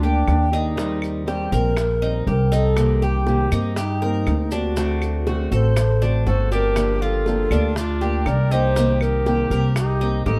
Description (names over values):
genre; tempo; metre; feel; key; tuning
latin, Cuban son and guajira; 120 BPM; 4/4; straight; G minor; A4 = 440 Hz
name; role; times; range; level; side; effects
bright wooden-headed alto flute; melody; 0.0-10.4 s; D4 to D5; -27 LUFS; equal; none
fingerpicked steel-string acoustic guitar; accompaniment; 0.0-10.4 s; C3 to G4; -28 LUFS; equal; none
Cuban tres; arpeggios; 0.0-10.4 s; D4 to Bb4; -31 LUFS; equal; none
upright bass; bass; 0.0-10.4 s; G1 to G2; -23 LUFS; equal; none
maracas; percussion; 0.0-10.4 s; none; -44 LUFS; equal; none
bongos; percussion; 0.3-10.4 s; none; -35 LUFS; equal; none
claves; percussion; 0.3-10.0 s; none; -38 LUFS; equal; none
clear trumpet; second line; 6.3-10.4 s; D4 to Bb4; -33 LUFS; equal; none
room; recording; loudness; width
little or no reverb; dark, warm production; -20 LUFS; mono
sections
0.0-10.4 A section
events
none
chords
0.0 Gm; 0.8 Eb6; 2.8 Cm7; 4.8 D7; 6.8 Gm7; 8.8 Cm7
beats
0.28 | 0.78 1.28 1.78 2.28 | 2.78 3.27 3.77 4.27 | 4.77 5.27 5.77 6.27 | 6.77 7.27 7.77 8.27 | 8.77 9.26 9.76 10.26